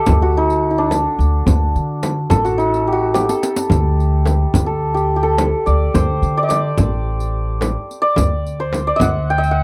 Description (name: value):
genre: Persian modal ensemble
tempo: 107 BPM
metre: 4/4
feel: straight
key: D dastgah homayun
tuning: A4 = 440 Hz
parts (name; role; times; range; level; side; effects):
- santur; melody; 0.0-9.6 s; D4 to G5; -20 LUFS; equal; none
- upright bass; bass; 0.1-9.6 s; A1 to D3; -21 LUFS; equal; none
- frame drum; percussion; 0.1-9.1 s; none; -24 LUFS; equal; none
- riq; percussion; 0.1-9.5 s; none; -31 LUFS; equal; none
- tombak; percussion; 0.1-9.1 s; none; -24 LUFS; equal; none
room: little or no reverb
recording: dry, close 1970s-style studio recording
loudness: -17 LUFS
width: mono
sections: 0.0-9.6 A section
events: drum fill 3.2-3.7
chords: none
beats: 0.36 0.92 | 1.48 2.04 2.60 3.16 | 3.71 4.27 4.83 5.39 | 5.95 6.51 7.06 7.62 | 8.18 8.73 9.29